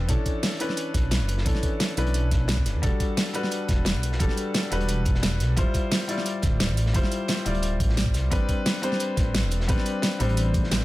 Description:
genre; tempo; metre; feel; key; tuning
liquid drum and bass; 175 BPM; 4/4; straight; E minor; A4 = 440 Hz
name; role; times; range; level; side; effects
clear grand piano; accompaniment; 0.0-10.8 s; E3 to D5; -28 LUFS; left 2 dB; digital delay
dark detuned saw bass; bass; 0.0-10.8 s; D1 to E2; -25 LUFS; equal; none
crunchy breakbeat drum kit; drums; 0.1-10.8 s; hi-hat, snare drum; -36 LUFS; equal; high-pass filter on hats, small room ambience, high-pass filter on snare, high-pass filter on room
electronic kick drum; drums; 0.1-10.6 s; none; -25 LUFS; equal; small room ambience
pop drum kit; drums; 0.1-10.8 s; hi-hat, snare drum; -28 LUFS; right 1 dB; small room ambience
room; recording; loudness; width
small room reverb; none; -22 LUFS; side -17 dB against mid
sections
0.0-10.8 A section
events
none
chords
0.1 Bm11; 2.8 Em11; 5.6 Dm11; 8.3 Am11

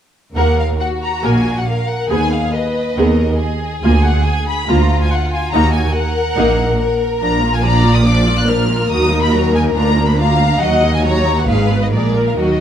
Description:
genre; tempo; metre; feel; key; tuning
quick classical-period movement for string orchestra; 140 BPM; 4/4; rubato; Eb minor; A4 = 441 Hz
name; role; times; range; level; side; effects
rich symphonic violin section; melody; 0.4-12.6 s; D5 to Gb6; -21 LUFS; left 4 dB; none
warm symphonic violin section; second line; 0.4-12.6 s; F4 to F5; -20 LUFS; left 2 dB; none
rich symphonic viola section; accompaniment; 0.4-12.6 s; F3 to Cb5; -19 LUFS; right 1 dB; none
rich symphonic cello section; bass; 0.4-12.6 s; D2 to Eb3; -19 LUFS; right 1 dB; none
rich symphonic double bass section; bass; 0.4-12.6 s; Ab1 to Eb2; -18 LUFS; right 2 dB; none
room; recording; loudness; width
moderate scoring stage reverb, RT60 1.6 s; none; -13 LUFS; side -9 dB against mid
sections
0.4-12.6 A section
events
none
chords
0.4 Ebm; 2.1 Abm/Eb; 3.8 Bb7/D; 5.5 Ebm; 7.2 Bb; 8.9 Ebm; 9.8 Bb/D; 10.6 Ebm; 11.5 Abm; 11.9 Bb7

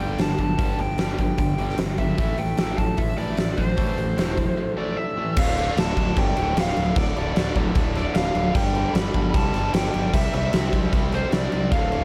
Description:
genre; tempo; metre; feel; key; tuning
hard rock; 151 BPM; 4/4; straight; D minor; A4 = 440 Hz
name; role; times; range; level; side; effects
dark smooth lead guitar; melody; 0.0-12.0 s; C5 to B5; -30 LUFS; equal; overdrive
distorted electric guitar; riff; 0.0-5.4, 11.7-12.0 s; D2 to A3; -35 LUFS; equal; distortion, slapback echo
tight distorted guitar; riff; 0.0-12.0 s; D2 to C4; -31 LUFS; equal; distortion, slapback echo
growling fingered electric bass; bass; 0.0-12.0 s; D1 to C2; -30 LUFS; equal; overdrive
huge arena drum kit; drums; 0.2-12.0 s; crash cymbal, hi-hat, kick drum, snare drum; -26 LUFS; equal; none
room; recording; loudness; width
light reverb, studio reverb; none; -23 LUFS; mono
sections
0.0-5.4 A section; 5.4-12.0 B section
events
break 4.6-5.4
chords
0.0 G5; 2.2 Am; 5.4 Dm; 8.5 G; 10.1 C

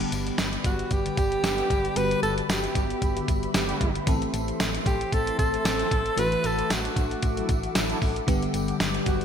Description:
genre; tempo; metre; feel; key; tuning
1980s-style pop; 114 BPM; 4/4; swing 55% on 16ths; G major; A4 = 440 Hz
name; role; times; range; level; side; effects
FM electric piano with soft pad layer; accompaniment; 0.0-9.2 s; D3 to A4; -30 LUFS; left 1 dB; chorus, phaser
glassy FM pad; sustained chords; 0.2-9.2 s; G4 to D6; -34 LUFS; left 2 dB; ensemble chorus, built-in reverb
solid FM bass; bass; 0.0-9.2 s; G1 to A1; -33 LUFS; equal; none
clean 12-bit digital drum machine; drums; 0.0-9.2 s; hi-hat, kick drum, snare drum, tambourine; -26 LUFS; equal; gated reverb
tambourine; percussion; 0.1-9.2 s; none; -43 LUFS; left 3 dB; none
clear alto saxophone; melody; 0.7-9.2 s; F#4 to B4; -28 LUFS; equal; ping-pong delay
mellow synth brass; stabs; 1.1-8.0 s; D3 to A4; -35 LUFS; equal; chorus, ping-pong delay
room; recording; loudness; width
moderate lush hall reverb, RT60 1.7 s, digital ambience; bright 1980s-style digital production; -23 LUFS; side -8 dB against mid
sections
0.0-9.2 A section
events
none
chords
0.0 G; 4.1 Am; 6.2 Dadd9/A; 8.3 G

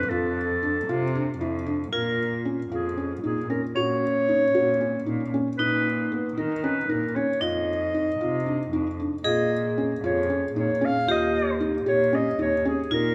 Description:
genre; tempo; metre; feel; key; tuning
contemporary instrumental, chamber music in an uneven meter; 229 BPM (eighths); 7/8; straight; unclear; A4 = 440 Hz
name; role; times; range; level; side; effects
warm clarinet; melody; 0.0-13.1 s; Ab4 to F5; -28 LUFS; equal; none
vibraphone with hard mallets; second line; 0.0-13.1 s; C4 to Ab4; -33 LUFS; equal; none
muted cello; bass; 0.0-13.1 s; Eb2 to D#3; -33 LUFS; equal; none
felt-muted upright piano; arpeggios; 0.1-13.1 s; B3 to G4; -30 LUFS; equal; none
room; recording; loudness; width
moderate concert hall reverb, RT60 1.9 s; none; -25 LUFS; mono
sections
0.0-1.9 A section; 1.9-13.1 B section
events
none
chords
0.0 F6; 1.9 Bbm7; 3.8 Ebm7/Bb; 5.6 Bmaj9/A#; 7.4 F5; 9.3 Bbm7; 11.1 Eb7

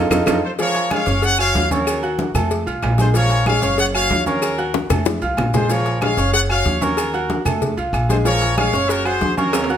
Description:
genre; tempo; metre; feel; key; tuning
latin, salsa; 188 BPM; 4/4; straight; Bb minor; A4 = 440 Hz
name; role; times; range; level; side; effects
bright upright piano; accompaniment; 0.0-9.8 s; F3 to Gb6; -21 LUFS; right 1 dB; none
upright bass; bass; 0.0-9.8 s; Gb1 to F2; -22 LUFS; equal; none
claves; percussion; 0.1-9.7 s; none; -32 LUFS; left 3 dB; none
congas; percussion; 0.1-9.8 s; none; -25 LUFS; equal; none
cowbell and bongos; percussion; 0.1-9.7 s; none; -27 LUFS; left 5 dB; none
maracas; percussion; 0.1-9.8 s; none; -34 LUFS; left 6 dB; none
timbales and agogo bells; percussion; 0.1-9.8 s; none; -27 LUFS; right 3 dB; none
brilliant trumpet section; melody; 0.4-9.8 s; Gb4 to Gb5; -21 LUFS; left 1 dB; none
room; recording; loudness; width
moderate large studio reverb, RT60 1.2 s; none; -16 LUFS; side -9 dB against mid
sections
0.6-9.8 A section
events
band accent 0.0-0.6; drum fill 0.1-0.6, 4.7-5.7, 9.5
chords
0.0 F7; 0.6 Bbm7; 1.2 Gb5; 1.9 Ebm7; 2.5 F; 3.1 Bbm7; 3.8 Gb5; 4.4 Ebm7; 5.1 F; 5.7 Bbm7; 6.3 Gb5; 7.0 Ebm7; 7.6 F; 8.3 Bbm7; 8.9 Gb5

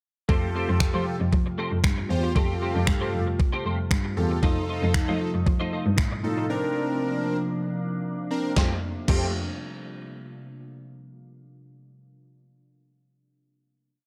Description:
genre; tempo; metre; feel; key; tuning
dance-pop; 116 BPM; 4/4; straight; F major; A4 = 444 Hz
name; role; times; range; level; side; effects
big bright polysynth; accompaniment; 0.3-9.3 s; A3 to C5; -32 LUFS; equal; chorus, sidechain pumping
glassy FM pad; sustained chords; 0.3-8.8 s; C3 to F4; -36 LUFS; equal; ensemble chorus, built-in reverb, sidechain pumping
twelve-string electric guitar; riff; 0.3-9.3 s; A3 to C5; -35 LUFS; equal; ensemble chorus
warm cello; bass; 0.3-9.3 s; E2 to F3; -29 LUFS; equal; sidechain pumping
gated 80s digital drum machine; drums; 0.3-9.2 s; crash cymbal, finger snaps, kick drum, snare drum; -27 LUFS; equal; gated reverb, gated reverb snare
room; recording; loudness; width
light reverb, digital ambience; dry, gritty hardware recording; -25 LUFS; mono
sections
0.3-8.6 verse; 8.6-10.6 final chord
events
break 6.5-8.6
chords
0.3 Fadd9; 4.4 F7; 6.5 Bbadd9; 8.6 Fadd9

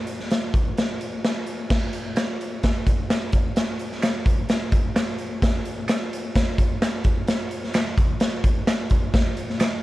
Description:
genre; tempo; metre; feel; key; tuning
soul; 129 BPM; 4/4; straight; none; none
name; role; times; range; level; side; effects
raw garage drum kit; drums; 0.1-9.7 s; crash cymbal, hi-hat, kick drum, snare drum; -21 LUFS; equal; none
finger snaps; percussion; 2.2-9.7 s; none; -33 LUFS; right 2 dB; none
room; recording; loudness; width
light reverb; dark, warm production; -21 LUFS; side -17 dB against mid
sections
0.0-1.7 A section; 1.7-9.1 B section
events
none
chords
none

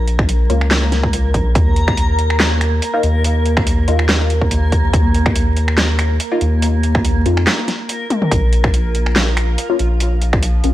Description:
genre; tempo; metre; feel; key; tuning
deep dubstep; 142 BPM; 4/4; swing 54% on 16ths, half-time; unclear; A4 = 440 Hz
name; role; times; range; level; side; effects
soft dub sub bass; bass; 0.0-10.7 s; Bb1 to F2; -16 LUFS; equal; none
backwards swelling texture; texture; 0.0-10.7 s; F3 to Bb4; -23 LUFS; equal; built-in reverb
dubstep drum kit; drums; 0.1-10.7 s; finger snaps, handclaps, hi-hat, snare drum, toms; -19 LUFS; equal; none
electronic kick drum; drums; 0.2-10.4 s; none; -16 LUFS; equal; none
filtered dub chord stab; stabs; 0.5-10.7 s; Bb3 to F4; -22 LUFS; left 3 dB; phaser, analog chorus, dub echo
room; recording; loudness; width
digital ambience; dry, gritty hardware recording, vinyl crackle; -13 LUFS; side -14 dB against mid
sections
0.0-10.7 A section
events
break 7.5-8.3; drum fill 8.1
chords
0.0 Bbm; 1.6 Eb5; 8.3 Bb5

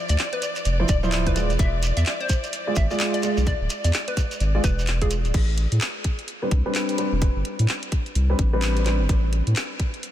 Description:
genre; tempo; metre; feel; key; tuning
UK garage, two-step garage; 128 BPM; 4/4; swing 61% on 16ths; A minor; A4 = 442 Hz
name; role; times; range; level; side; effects
dark studio violin section; sustained chords; 0.0-5.4 s; D5; -34 LUFS; left 1 dB; sidechain pumping
hollow square pluck; melody; 0.1-5.3 s; G#4 to E5; -32 LUFS; left 1 dB; chorus, analog delay
saturated sub bass; bass; 0.1-9.5 s; D1 to A2; -22 LUFS; equal; tube saturation
garage drum kit; drums; 0.1-10.1 s; crash cymbal, handclaps, hi-hat, rim click; -30 LUFS; equal; none
shekere; percussion; 0.1-5.3 s; none; -36 LUFS; right 3 dB; none
dark baby grand piano; stabs; 0.8-9.0 s; F3 to D5; -28 LUFS; right 1 dB; lush chorus, low-pass filter, tape echo
electronic kick drum; drums; 0.9-9.9 s; none; -22 LUFS; equal; none
room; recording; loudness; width
light reverb; none; -20 LUFS; side -12 dB against mid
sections
0.0-5.3 A section; 5.3-10.1 B section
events
drop 0.0-5.3; filter sweep on grand piano 5.3-10.1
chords
0.0 Dm9; 1.4 E7b9; 5.3 Am11

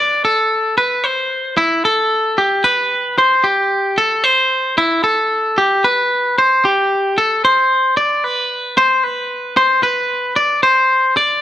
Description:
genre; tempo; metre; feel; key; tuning
rock; 75 BPM (dotted quarters); 6/8; straight; A minor; A4 = 440 Hz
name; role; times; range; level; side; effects
twangy electric guitar; solo; 0.0-11.4 s; E4 to D5; -13 LUFS; equal; none
room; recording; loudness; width
light reverb, digital ambience; none; -13 LUFS; side -12 dB against mid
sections
0.0-7.4 A section; 7.4-11.4 B section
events
none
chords
none

